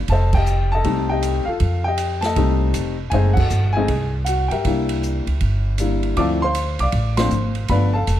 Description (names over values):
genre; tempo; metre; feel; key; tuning
jazz piano trio; 158 BPM; 4/4; swing 65% on 8ths; unclear; A4 = 440 Hz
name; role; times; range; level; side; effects
upright bass; bass; 0.0-8.2 s; F1 to G2; -20 LUFS; equal; none
warm baby grand piano; melody; 0.1-8.2 s; F3 to D6; -21 LUFS; left 2 dB; plate reverb
swinging big-band drum kit; drums; 0.1-8.2 s; crash cymbal, hi-hat, kick drum, ride cymbal, snare drum; -27 LUFS; right 2 dB; none
room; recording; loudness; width
light reverb; dark, warm production; -17 LUFS; side -12 dB against mid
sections
0.0-8.2 A section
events
band accent 0.3, 3.3, 7.1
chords
0.1 F9; 3.1 F#dim7; 4.7 C9; 6.2 Dm7; 7.7 G9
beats
| 0.09 0.47 0.85 1.23 | 1.61 1.99 2.37 2.75 | 3.13 3.51 3.89 4.27 | 4.65 5.03 5.41 5.79 | 6.17 6.55 6.93 7.31 | 7.69 8.07